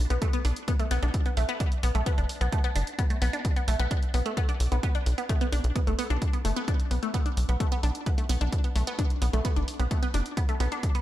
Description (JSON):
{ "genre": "driving peak-time techno", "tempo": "130 BPM", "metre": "4/4", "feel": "straight", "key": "B minor", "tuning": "A4 = 440 Hz", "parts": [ { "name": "tight sequencer bass", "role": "bass", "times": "0.0-10.7 s", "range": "F#1 to B1", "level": "-25 LUFS", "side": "equal", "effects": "sidechain pumping" }, { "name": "resonant blip pluck", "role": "riff", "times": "0.1-11.0 s", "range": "A3 to D4", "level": "-31 LUFS", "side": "equal", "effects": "phaser, sidechain pumping, tape echo" }, { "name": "electronic hi-hat", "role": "drums", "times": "0.1-11.0 s", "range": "none", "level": "-40 LUFS", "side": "right 1 dB", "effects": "sidechain pumping on hats, studio reverb, sidechain pumping on cymbals" }, { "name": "electronic kick drum", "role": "drums", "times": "0.2-10.9 s", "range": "none", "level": "-27 LUFS", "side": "equal", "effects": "studio reverb" } ], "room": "light reverb, digital ambience", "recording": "none", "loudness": "-25 LUFS", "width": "side -14 dB against mid", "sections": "0.0-11.0 A section", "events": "none", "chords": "0.0 B5" }